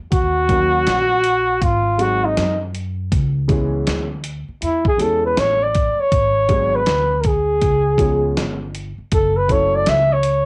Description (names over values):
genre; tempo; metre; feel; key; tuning
hip hop, jazz-hop; 80 BPM; 4/4; swing 63% on 16ths; unclear; A4 = 440 Hz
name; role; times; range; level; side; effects
upright bass; bass; 0.0-10.5 s; F#1 to F#2; -25 LUFS; equal; none
breathy flugelhorn; melody; 0.1-10.5 s; D#4 to E5; -19 LUFS; equal; cassette tape
dusty soul sampler-style drum kit; drums; 0.1-10.5 s; hi-hat, kick drum, snare drum; -24 LUFS; equal; cassette tape
dark upright piano; accompaniment; 0.5-10.0 s; D#3 to A4; -26 LUFS; equal; cassette tape
room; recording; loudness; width
light reverb; home recording on cassette; -18 LUFS; mono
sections
0.0-10.5 A section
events
flugelhorn solo 0.0-10.5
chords
0.1 D#m7; 1.6 G#7; 3.1 C#m7; 6.1 G#m7b5; 7.6 C#7; 9.1 F#m7